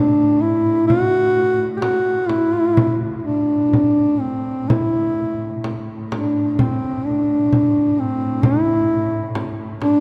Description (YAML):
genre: caucasian folk, Caucasian lament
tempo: 64 BPM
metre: 4/4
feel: rubato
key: A dorian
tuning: A4 = 440 Hz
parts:
  - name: mellow duduk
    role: melody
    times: 0.0-10.0 s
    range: C4 to G4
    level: -19 LUFS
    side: equal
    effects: none
  - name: muted symphonic cello section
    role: drone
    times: 0.0-10.0 s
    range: A2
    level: -30 LUFS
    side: equal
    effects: none
  - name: frame drum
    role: percussion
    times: 0.9-10.0 s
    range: none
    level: -25 LUFS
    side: equal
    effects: none
room: wet cathedral reverb, RT60 4.4 s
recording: recorded in a church or concert hall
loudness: -18 LUFS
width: mono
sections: 0.0-10.0 A section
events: none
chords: none